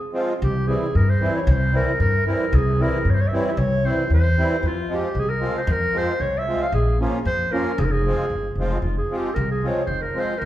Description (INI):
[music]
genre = balkan folk, Balkan wedding band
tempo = 114 BPM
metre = 2/4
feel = straight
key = F harmonic minor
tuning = A4 = 439 Hz
[part]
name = mellow clarinet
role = melody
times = 0.0-10.5 s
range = F4 to F5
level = -24 LUFS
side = equal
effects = none
[part]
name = musette accordion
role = accompaniment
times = 0.1-10.3 s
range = E3 to F4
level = -26 LUFS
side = right 1 dB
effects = none
[part]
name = upright bass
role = bass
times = 0.4-10.5 s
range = F1 to G2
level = -21 LUFS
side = equal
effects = none
[sound]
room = wet large studio reverb, RT60 1.3 s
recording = band playing live in one room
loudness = -19 LUFS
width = side -13 dB against mid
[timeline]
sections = 0.4-8.8 A section; 8.8-10.5 B section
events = break 0.0-0.4; clarinet solo 8.8-10.5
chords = 0.4 C; 4.6 Fm; 6.7 Bbm; 7.8 Fm